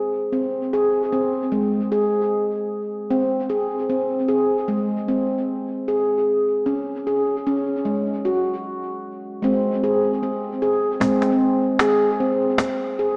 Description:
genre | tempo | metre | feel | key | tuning
world meditative, meditative tuned percussion | 76 BPM | 4/4 | swing 54% on 16ths | G# major | A4 = 440 Hz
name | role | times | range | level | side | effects
handpan | arpeggios | 0.0-13.2 s | G#3 to G#4 | -22 LUFS | equal | diffuse ambient delay
cajon | percussion | 11.0-12.8 s | none | -29 LUFS | equal | none
room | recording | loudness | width
wet lush hall reverb, RT60 2.5 s | dreamy mix soaked in reverb, small speaker sound | -22 LUFS | mono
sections
0.0-11.0 A section; 11.0-13.2 B section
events
none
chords
0.0 G#; 4.7 C#5/G#; 7.8 F#5/G#; 9.4 G#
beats
0.72 | 1.52 2.31 3.10 3.89 | 4.68 5.47 6.26 7.05 | 7.84 8.63 9.43 10.22 | 11.01 11.80 12.59

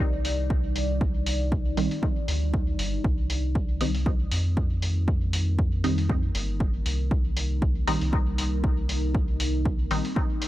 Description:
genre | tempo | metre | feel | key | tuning
dub techno | 118 BPM | 4/4 | swing 55% on 16ths | C minor | A4 = 440 Hz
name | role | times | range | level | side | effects
deep dark ambient pad | sustained chords | 0.0-10.5 s | G3 to D5 | -34 LUFS | left 1 dB | chorus, built-in reverb, sidechain pumping
filtered dub chord stab | stabs | 0.0-10.2 s | Eb3 to Eb4 | -30 LUFS | equal | phaser, vintage 12-bit sampler grit, sidechain pumping, dub echo
soft dub sub bass | bass | 0.0-10.0 s | G1 to F2 | -27 LUFS | equal | tube saturation, sidechain pumping
electronic hi-hat | drums | 0.2-10.5 s | none | -33 LUFS | left 1 dB | none
electronic kick drum | drums | 0.5-10.3 s | none | -26 LUFS | equal | none
room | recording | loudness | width
little or no reverb | dry, gritty hardware recording, transformer saturation | -23 LUFS | side -15 dB against mid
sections
0.0-10.5 A section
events
none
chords
0.0 Cm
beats
0.50 | 1.01 1.52 2.03 2.54 | 3.04 3.55 4.06 4.57 | 5.08 5.59 6.09 6.60 | 7.11 7.62 8.13 8.64 | 9.15 9.65 10.16

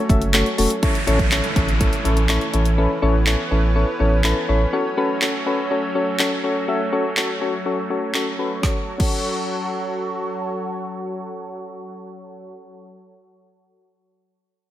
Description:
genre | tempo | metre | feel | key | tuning
dance-pop | 123 BPM | 4/4 | straight | F# minor | A4 = 444 Hz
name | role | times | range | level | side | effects
lush unison pad | sustained chords | 0.0-12.5 s | E3 to C#5 | -27 LUFS | right 1 dB | chorus, sidechain pumping, low-pass filter
soft electric-piano-like synth keys | accompaniment | 0.1-12.9 s | A3 to B5 | -23 LUFS | left 2 dB | chorus, low-pass filter
saturated sub bass | bass | 0.1-4.7 s | E1 to A1 | -19 LUFS | right 1 dB | sidechain pumping
deep house drum kit | drums | 0.1-9.1 s | crash cymbal, handclaps, hi-hat, kick drum, snare drum | -22 LUFS | equal | none
downlifter | sound effects | 0.8-4.7 s | none | -28 LUFS | right 1 dB | none
room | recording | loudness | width
light reverb, digital ambience | none | -18 LUFS | side -12 dB against mid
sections
0.8-8.6 A section; 8.6-12.5 B section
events
synth keys fill 4.0-4.7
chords
0.0 F#m; 0.8 A; 4.7 F#m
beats
0.34 | 0.83 1.32 1.80 2.29 | 2.78 3.27 3.75 4.24 | 4.73 5.22 5.71 6.19 | 6.68 7.17 7.66 8.14 | 8.63 9.12 9.61 10.10 | 10.58 11.07 11.56 12.05

